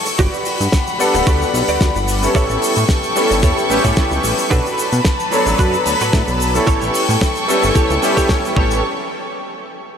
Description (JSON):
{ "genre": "nu-disco, nu disco", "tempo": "111 BPM", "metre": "4/4", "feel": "swing 55% on 16ths", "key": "A mixolydian", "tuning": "A4 = 440 Hz", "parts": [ { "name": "clear studio violin section", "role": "sustained chords", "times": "0.0-8.8 s", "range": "G3 to C#6", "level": "-20 LUFS", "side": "equal", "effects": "sidechain pumping" }, { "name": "direct-recorded clean electric guitar", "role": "riff", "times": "0.1-8.8 s", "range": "D4 to D5", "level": "-24 LUFS", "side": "right 3 dB", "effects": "ensemble chorus, ping-pong delay" }, { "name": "damped 70s drum kit", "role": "drums", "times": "0.1-8.5 s", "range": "hi-hat, shaker, snare drum", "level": "-23 LUFS", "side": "left 2 dB", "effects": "studio reverb" }, { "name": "tube shaker", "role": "percussion", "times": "0.1-8.8 s", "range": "none", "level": "-33 LUFS", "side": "left 3 dB", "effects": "none" }, { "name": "chorused synth bass", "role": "bass", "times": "0.2-8.8 s", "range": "D1 to B2", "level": "-20 LUFS", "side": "equal", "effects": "none" }, { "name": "electronic kick drum", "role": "drums", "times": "0.2-8.7 s", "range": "none", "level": "-18 LUFS", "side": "equal", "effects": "studio reverb" }, { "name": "clear grand piano", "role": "accompaniment", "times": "1.0-8.8 s", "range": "F#3 to F#5", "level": "-19 LUFS", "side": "left 1 dB", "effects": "ensemble chorus, sidechain pumping, ping-pong delay" } ], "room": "moderate huge ambient reverb, RT60 5.0 s", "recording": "dreamy mix soaked in reverb", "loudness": "-13 LUFS", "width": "side -7 dB against mid", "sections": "0.0-8.8 A section; 8.8-10.0 B section", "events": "drop 0.0-8.8", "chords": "0.2 Gmaj7; 2.3 A7; 4.5 Bm7; 6.7 A7; 8.8 N.C." }